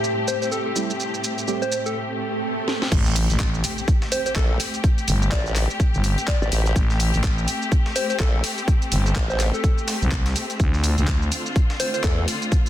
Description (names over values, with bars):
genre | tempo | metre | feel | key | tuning
bass house | 125 BPM | 4/4 | swing 59% on 16ths | A minor | A4 = 440 Hz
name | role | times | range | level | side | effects
dark symphonic string section | sustained chords | 0.0-12.7 s | A2 to G4 | -29 LUFS | left 2 dB | sidechain pumping
garage drum kit | drums | 0.0-12.7 s | crash cymbal, handclaps, hi-hat, shaker, snare drum | -28 LUFS | right 1 dB | soft clipping on snare
granular cloud pad | texture | 0.0-2.0 s | C4 to A5 | -30 LUFS | equal | built-in reverb, sidechain pumping
soft struck synth lead | melody | 0.3-12.2 s | A4 to D5 | -28 LUFS | left 1 dB | chorus, cassette tape, ping-pong delay
percussive organ stab | stabs | 0.8-1.6 s | G3 to G4 | -29 LUFS | right 4 dB | chorus, sidechain pumping, ping-pong delay
swell and impact | sound effects | 2.1-4.8 s | none | -30 LUFS | right 2 dB | none
growling FM bass | bass | 2.9-11.3 s | G1 to D2 | -21 LUFS | equal | overdrive, sidechain pumping
breakbeat sampler-style drum kit | drums | 2.9-12.7 s | hi-hat, snare drum | -37 LUFS | left 2 dB | none
electronic kick drum | drums | 2.9-12.6 s | none | -20 LUFS | equal | none
formant-sweep wobble bass | bass | 4.4-12.3 s | A1 to E2 | -22 LUFS | equal | chorus, sidechain pumping
room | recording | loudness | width
light reverb | dense, heavily limited modern master | -19 LUFS | side -12 dB against mid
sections
0.0-2.9 A section; 2.9-12.7 B section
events
swell 2.1-2.9; drum fill 2.7; drop 2.9-12.7; impact 2.9-4.8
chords
0.0 Am7; 10.6 Dm7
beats
0.04 0.52 | 1.00 1.48 1.96 2.44 | 2.92 3.40 3.88 4.36 | 4.84 5.32 5.80 6.28 | 6.76 7.24 7.72 8.20 | 8.68 9.16 9.64 10.12 | 10.60 11.08 11.56 12.04 | 12.52